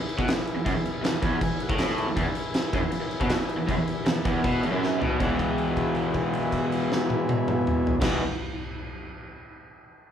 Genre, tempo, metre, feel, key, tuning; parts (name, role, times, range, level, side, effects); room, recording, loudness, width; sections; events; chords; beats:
garage rock duo or trio; 158 BPM; 4/4; straight; E major; A4 = 439 Hz
combo organ; sustained chords; 0.0-8.2 s; E4 to B5; -34 LUFS; left 2 dB
raw garage guitar; riff; 0.0-8.2 s; E2 to E3; -26 LUFS; equal; overdrive
oversized low-tuned drum kit; drums; 0.1-8.1 s; crash cymbal, kick drum, snare drum, toms; -28 LUFS; equal
moderate large studio reverb, RT60 1.1 s; band playing live in one room, cassette tape; -23 LUFS; side -9 dB against mid
0.0-5.2 A section; 5.2-8.3 B section
transistor combo organ fill 1.0-2.2; drum fill 4.8-5.2; held note 5.2-8.0
0.0 E
0.28 | 0.66 1.04 1.42 1.79 | 2.17 2.55 2.93 3.31 | 3.69 4.07 4.45 4.83 | 5.21 5.59 5.97 6.35 | 6.74 7.12 7.50 7.88